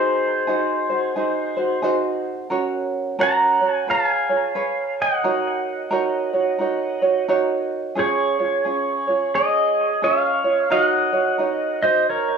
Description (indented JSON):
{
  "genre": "Hawaiian",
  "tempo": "88 BPM",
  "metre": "4/4",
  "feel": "swing 62% on 8ths",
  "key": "F# major, Db major from 8.0 s",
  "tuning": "A4 = 440 Hz",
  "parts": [
    { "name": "pedal steel guitar", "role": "melody", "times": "0.0-12.4 s", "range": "G#4 to A#5", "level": "-20 LUFS", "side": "equal", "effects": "cassette tape, analog delay" },
    { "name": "tenor ukulele", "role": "accompaniment", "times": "0.0-12.4 s", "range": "C#4 to C#5", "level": "-22 LUFS", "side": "right 3 dB", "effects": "none" }
  ],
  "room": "wet spring reverb, RT60 1.7 s, studio ambience",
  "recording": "home recording on cassette, small room ambience",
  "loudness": "-18 LUFS",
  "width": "side -6 dB against mid",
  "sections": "0.0-8.0 A section; 8.0-12.4 B section",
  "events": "none",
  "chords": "0.0 G#7; 2.5 F#/C#; 3.9 C#7; 5.2 F#6; 8.0 Db; 10.7 Ebm7"
}